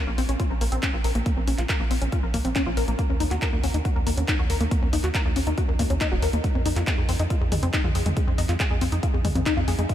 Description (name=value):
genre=uplifting trance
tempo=139 BPM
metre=4/4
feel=straight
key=unclear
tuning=A4 = 440 Hz
part: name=tight sequenced synth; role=arpeggios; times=0.0-9.9 s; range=Ab3 to Bb4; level=-28 LUFS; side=left 3 dB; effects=chorus, cassette tape, sidechain pumping, ping-pong delay
part: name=tight sequencer bass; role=bass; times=0.1-9.9 s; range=Eb1 to F2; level=-26 LUFS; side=right 1 dB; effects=sidechain pumping
part: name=punchy analog drum machine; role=drums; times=0.2-9.9 s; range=handclaps, hi-hat, toms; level=-30 LUFS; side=equal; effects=none
part: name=electronic kick drum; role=drums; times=0.4-9.9 s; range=none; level=-25 LUFS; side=equal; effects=none
room=light reverb, digital ambience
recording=faint mains hum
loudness=-21 LUFS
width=side -11 dB against mid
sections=0.0-9.9 A section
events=none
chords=0.0 N.C.; 3.0 Eb5; 6.4 Fm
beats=0.40 0.83 | 1.26 1.69 2.12 2.56 | 2.99 3.42 3.85 4.28 | 4.71 5.15 5.58 6.01 | 6.44 6.87 7.30 7.74 | 8.17 8.60 9.03 9.46 | 9.89